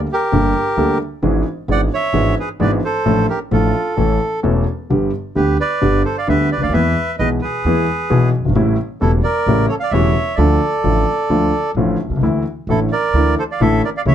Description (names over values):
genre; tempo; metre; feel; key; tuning
tango; 131 BPM; 4/4; rubato; D minor; A4 = 440 Hz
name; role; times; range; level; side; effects
warm concert grand piano; accompaniment; 0.0-14.1 s; E1 to A4; -17 LUFS; left 1 dB; none
upright bass; bass; 0.0-14.1 s; E1 to E2; -21 LUFS; right 1 dB; none
bandoneon; melody; 0.1-14.1 s; E4 to F#5; -19 LUFS; right 2 dB; none
room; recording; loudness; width
light reverb; dark, warm production; -14 LUFS; side -10 dB against mid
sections
0.0-14.1 A section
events
none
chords
0.0 Gmadd9; 1.2 E7/G#; 3.1 Dm/A; 4.0 A; 4.9 G; 6.7 E; 8.6 A7; 10.4 Dm; 12.2 Dsus2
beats
0.32 0.78 | 1.23 1.69 2.14 2.59 | 3.05 3.51 3.97 4.44 | 4.90 5.36 5.82 6.28 | 6.74 7.20 7.65 8.11 | 8.56 9.02 9.47 9.92 | 10.38 10.84 11.30 11.76 | 12.22 12.68 13.14 13.61 | 14.06